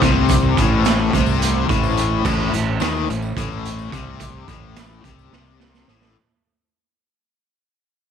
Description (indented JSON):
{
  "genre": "psychedelic rock",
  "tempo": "215 BPM (eighths)",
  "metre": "7/8",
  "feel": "straight",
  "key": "A minor",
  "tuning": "A4 = 442 Hz",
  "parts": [
    { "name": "warm studio string section", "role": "sustained chords", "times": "0.0-6.1 s", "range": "A3 to C5", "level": "-26 LUFS", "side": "right 7 dB", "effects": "none" },
    { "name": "biting overdriven guitar", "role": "riff", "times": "0.0-6.2 s", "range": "A2 to D#3", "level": "-21 LUFS", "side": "left 12 dB", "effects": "tremolo" },
    { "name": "fuzz fingered electric bass", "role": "bass", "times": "0.0-6.1 s", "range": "A1 to D#2", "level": "-22 LUFS", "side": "equal", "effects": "overdrive" },
    { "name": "raw garage drum kit", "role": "drums", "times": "0.0-6.1 s", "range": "crash cymbal, hi-hat, kick drum, snare drum", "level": "-22 LUFS", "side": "right 4 dB", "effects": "none" },
    { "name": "tambourine", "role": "percussion", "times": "0.3-5.9 s", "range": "none", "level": "-42 LUFS", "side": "left 14 dB", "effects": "none" }
  ],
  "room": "light reverb, small room ambience",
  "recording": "1960s-style stereo with parts hard left and right",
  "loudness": "-16 LUFS",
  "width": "side -8 dB against mid",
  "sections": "0.0-6.2 A section",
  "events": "fade-out 0.0-6.2; drum fill 5.3-6.2",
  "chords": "0.0 Am",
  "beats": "0.02 | 0.30 0.58 0.86 1.14 1.42 1.69 1.97 | 2.25 2.53 2.81 3.09 3.37 3.65 3.93 | 4.21 4.49 4.77 5.04 5.33 5.60 5.88"
}